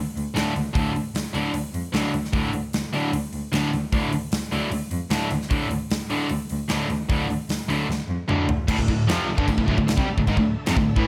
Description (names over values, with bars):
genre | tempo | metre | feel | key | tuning
hard rock | 151 BPM | 4/4 | straight | D minor | A4 = 437 Hz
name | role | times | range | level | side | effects
rich cello | bass | 0.0-11.0 s | C2 to A2 | -30 LUFS | equal | none
big rock drum kit | drums | 0.2-11.1 s | crash cymbal, hi-hat, kick drum, snare drum, toms | -29 LUFS | equal | none
tight distorted guitar | riff | 0.3-11.1 s | D2 to G3 | -30 LUFS | equal | distortion
cranked stack guitar | riff | 0.4-11.1 s | D2 to G3 | -30 LUFS | equal | overdrive
overdriven tonewheel organ | sustained chords | 8.7-11.1 s | D4 to E5 | -40 LUFS | equal | none
tight distorted guitar | riff | 8.7-11.1 s | D2 to G3 | -30 LUFS | equal | none
room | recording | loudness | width
light reverb | none | -24 LUFS | mono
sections
0.0-8.7 A section; 8.7-11.1 B section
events
drum fill 7.9-8.7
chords
0.0 D5; 8.7 Dm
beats
0.35 | 0.75 1.15 1.54 1.94 | 2.34 2.73 3.13 3.53 | 3.92 4.32 4.72 5.12 | 5.51 5.91 6.31 6.70 | 7.10 7.50 7.89 8.29 | 8.69 9.09 9.48 9.88 | 10.27 10.67 11.06